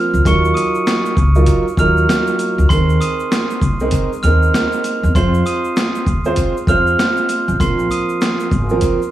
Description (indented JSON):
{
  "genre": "hip hop, boom-bap hip-hop",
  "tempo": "98 BPM",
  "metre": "4/4",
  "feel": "swing 61% on 16ths",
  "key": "unclear",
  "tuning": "A4 = 440 Hz",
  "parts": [
    { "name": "dark concert grand piano", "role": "accompaniment", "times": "0.0-9.0 s", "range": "F3 to C5", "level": "-19 LUFS", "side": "right 3 dB", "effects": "cassette tape, high-pass filter, low-pass filter" },
    { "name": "upright bass", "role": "bass", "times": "0.1-8.8 s", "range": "Ab1 to F2", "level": "-16 LUFS", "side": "equal", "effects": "none" },
    { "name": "egg shaker", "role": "percussion", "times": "0.1-9.1 s", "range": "none", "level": "-42 LUFS", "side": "left 7 dB", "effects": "none" },
    { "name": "glockenspiel with brass mallets", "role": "melody", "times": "0.3-9.1 s", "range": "C6 to F7", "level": "-20 LUFS", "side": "right 1 dB", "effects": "high-pass filter, low-pass filter, tape echo" },
    { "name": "boom bap sampler-style drum kit", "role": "drums", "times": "0.3-9.0 s", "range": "hi-hat, kick drum, shaker, snare drum", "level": "-19 LUFS", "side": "equal", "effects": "none" }
  ],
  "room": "small room ambience",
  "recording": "vinyl crackle",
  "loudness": "-13 LUFS",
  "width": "side -13 dB against mid",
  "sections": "0.0-9.1 A section",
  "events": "none",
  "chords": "0.3 Ebmadd9; 2.7 Abadd9; 5.2 Fm; 7.6 Bbsus2"
}